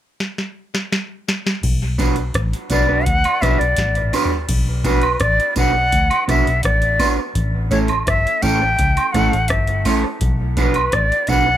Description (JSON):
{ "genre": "roots reggae", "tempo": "84 BPM", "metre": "4/4", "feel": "straight", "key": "B minor", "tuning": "A4 = 439 Hz", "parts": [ { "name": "booming analog drum machine", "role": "drums", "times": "0.2-11.5 s", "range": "crash cymbal, hi-hat, kick drum, rim click, snare drum, toms", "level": "-21 LUFS", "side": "equal", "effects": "analog delay" }, { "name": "vintage muted fingered electric bass", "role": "bass", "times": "1.6-11.6 s", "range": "G1 to D2", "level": "-21 LUFS", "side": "left 1 dB", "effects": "none" }, { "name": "electric guitar at the edge of break-up", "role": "accompaniment", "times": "2.0-11.5 s", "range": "A3 to B4", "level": "-22 LUFS", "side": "right 4 dB", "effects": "spring reverb, analog delay" }, { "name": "tambourine and woodblock", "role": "percussion", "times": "2.0-11.5 s", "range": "none", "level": "-24 LUFS", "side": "right 5 dB", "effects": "none" }, { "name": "jazz flute", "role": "melody", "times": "2.7-11.6 s", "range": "B4 to G5", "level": "-19 LUFS", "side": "left 1 dB", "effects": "analog delay" } ], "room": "light reverb", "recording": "none", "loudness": "-15 LUFS", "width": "side -11 dB against mid", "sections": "0.0-1.6 A section; 1.6-4.5 B section; 4.5-11.6 C section", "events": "drum fill 0.2-1.6, 3.8-4.5", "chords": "0.0 N.C.; 1.6 Bm; 7.3 A; 10.2 Bm" }